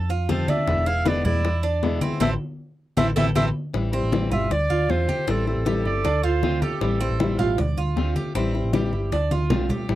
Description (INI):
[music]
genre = latin, Cuban son and guajira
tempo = 156 BPM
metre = 4/4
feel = straight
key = A harmonic minor, A minor from 3.7 s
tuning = A4 = 443 Hz
[part]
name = Cuban tres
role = arpeggios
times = 0.0-10.0 s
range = C4 to D5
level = -28 LUFS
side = right 4 dB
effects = none
[part]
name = hollow-body short-scale picked electric bass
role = bass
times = 0.0-10.0 s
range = E1 to F2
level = -24 LUFS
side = right 1 dB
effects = none
[part]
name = bongos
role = percussion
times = 0.1-10.0 s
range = none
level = -29 LUFS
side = left 7 dB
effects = none
[part]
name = congas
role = percussion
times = 0.1-10.0 s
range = none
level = -27 LUFS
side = equal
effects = none
[part]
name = clear clarinet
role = melody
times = 0.3-6.6 s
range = A4 to F5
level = -26 LUFS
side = equal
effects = none
[part]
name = nylon-string guitar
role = accompaniment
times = 0.3-10.0 s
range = B2 to F4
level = -28 LUFS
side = left 4 dB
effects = none
[part]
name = warm trumpet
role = second line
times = 5.9-7.5 s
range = A4 to D5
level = -30 LUFS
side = right 6 dB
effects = none
[sound]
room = light reverb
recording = dry, close 1970s-style studio recording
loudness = -20 LUFS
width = side -14 dB against mid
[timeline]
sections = 0.0-3.7 A section; 3.7-10.0 B section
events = clarinet solo 0.0-3.7; band accent 2.2-3.7; drum fill 9.3-9.9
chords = 0.0 F; 0.7 E7; 2.2 Am; 3.7 Am7; 4.5 Dm7; 5.3 Am7; 6.0 Dm7; 6.8 Am7; 7.6 Dm7; 8.4 Am7; 9.1 Dm7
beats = 0.29 | 0.68 1.06 1.44 1.82 | 2.21 2.59 2.98 3.36 | 3.74 4.13 4.51 4.89 | 5.28 5.66 6.05 6.43 | 6.82 7.20 7.58 7.97 | 8.35 8.74 9.12 9.50 | 9.89